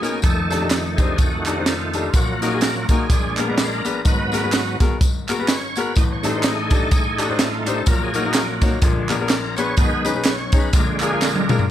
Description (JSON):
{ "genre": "uptempo gospel", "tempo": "126 BPM", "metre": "4/4", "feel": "swing 57% on 8ths", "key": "unclear", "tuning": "A4 = 436 Hz", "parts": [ { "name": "clear baby grand piano", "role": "accompaniment", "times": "0.0-11.7 s", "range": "F1 to Db5", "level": "-24 LUFS", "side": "left 4 dB", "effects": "none" }, { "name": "bright tonewheel organ", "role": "sustained chords", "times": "0.0-11.7 s", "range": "F2 to Eb5", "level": "-23 LUFS", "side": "right 1 dB", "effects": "fast rotary speaker, overdrive, chorus vibrato" }, { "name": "crisp fusion drum kit", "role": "drums", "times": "0.0-11.7 s", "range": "hi-hat, kick drum, snare drum, toms", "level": "-19 LUFS", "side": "equal", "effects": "none" }, { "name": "tambourine and handclaps", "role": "percussion", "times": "0.0-11.6 s", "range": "none", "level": "-30 LUFS", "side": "equal", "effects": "none" } ], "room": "light reverb, studio reverb", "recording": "none", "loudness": "-17 LUFS", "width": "side -11 dB against mid", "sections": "0.0-11.7 A section", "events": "tonewheel organ solo 0.0-11.7; drum fill 11.2-11.7", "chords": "0.2 F13; 2.1 Ebm/Bb; 3.1 Bb7b9; 4.1 Abm9; 6.0 F13/A; 7.9 Ebm/Bb; 8.8 Bb7b9; 9.8 B69; 10.7 Bb7" }